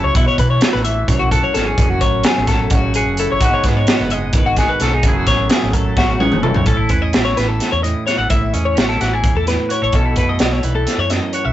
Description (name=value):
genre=math rock and midwest emo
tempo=258 BPM (eighths)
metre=7/8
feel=straight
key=A lydian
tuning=A4 = 440 Hz
part: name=twangy electric guitar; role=accompaniment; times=0.0-11.5 s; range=F#2 to A4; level=-22 LUFS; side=right 3 dB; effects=none
part: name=twelve-string electric guitar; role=arpeggios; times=0.0-11.5 s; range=E4 to F#5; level=-19 LUFS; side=left 4 dB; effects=none
part: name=fingered electric bass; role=bass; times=0.0-11.5 s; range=F#1 to B2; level=-20 LUFS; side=equal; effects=none
part: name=crisp fusion drum kit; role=drums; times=0.1-11.4 s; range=hi-hat, kick drum, snare drum, toms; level=-17 LUFS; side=equal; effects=none
room=light reverb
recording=rough rehearsal-room recording, warm saturation, nothing above 7.9 kHz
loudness=-13 LUFS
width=side -13 dB against mid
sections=0.0-6.7 A section; 6.7-11.5 B section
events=drum fill 6.0-6.7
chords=0.2 B9sus4; 1.8 F#m9; 3.4 G#m7; 5.0 F#m9; 6.7 Amaj7; 9.9 B7sus4